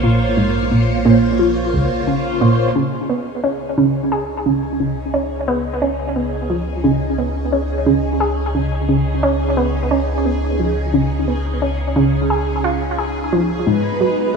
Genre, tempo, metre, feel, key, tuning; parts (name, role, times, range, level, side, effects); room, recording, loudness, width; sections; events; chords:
ambient, sequencer-driven space music; 88 BPM; 4/4; straight; A4 = 440 Hz
phased string machine; sustained chords; 0.0-14.4 s; C#3 to A#5; -22 LUFS; right 1 dB; ensemble chorus, phaser, shimmer reverb
analog pluck; riff; 0.0-14.2 s; Db2 to G#4; -17 LUFS; right 1 dB; chorus, shimmer reverb, analog delay
warm sub bass; bass; 0.0-14.4 s; G#1 to C#2; -24 LUFS; equal
bubbling stepped-filter texture; texture; 0.0-14.4 s; F4 to G#5; -34 LUFS; equal; chorus, built-in reverb, shimmer reverb
breathy flute-like synth lead; melody; 13.7-14.4 s; B4; -20 LUFS; right 3 dB; ensemble chorus
moderate plate reverb, RT60 3.7 s; echo-heavy mix, cassette tape, small room ambience; -15 LUFS; side -5 dB against mid
0.0-2.8 A section; 2.8-14.4 B section
filter sweep on synth arpeggio sound 0.0-2.8; fade-in on string machine 2.8-14.4; fade-in on sub bass 2.8-14.4; fade-in on synth texture 2.8-14.4
0.0 Bbmadd9; 2.8 C#sus2; 13.7 G#madd9